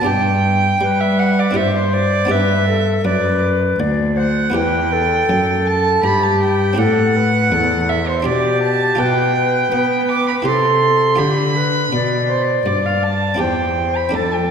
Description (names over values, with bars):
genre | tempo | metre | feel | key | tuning
classical, baroque-style sonata movement with continuo | 81 BPM | 3/4 | rubato | G major, C major from 9.0 s | A4 = 440 Hz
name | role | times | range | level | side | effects
dark violin | second line | 0.0-14.5 s | C5 to D6 | -18 LUFS | right 4 dB | none
buff-stop harpsichord | accompaniment | 0.0-14.5 s | D2 to A4 | -25 LUFS | equal | none
dark cello | bass | 0.0-14.5 s | D2 to B3 | -19 LUFS | equal | none
bright baroque flute | melody | 0.8-14.5 s | G4 to D5 | -20 LUFS | left 4 dB | none
room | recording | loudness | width
wet scoring stage reverb, RT60 1.5 s | none | -14 LUFS | side -7 dB against mid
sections
0.1-14.5 A section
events
none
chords
0.1 G; 1.6 C/G; 2.3 G; 4.5 Em; 6.8 Am7; 8.3 G/B; 9.0 G7/B; 10.4 C; 11.2 G7; 13.4 C/E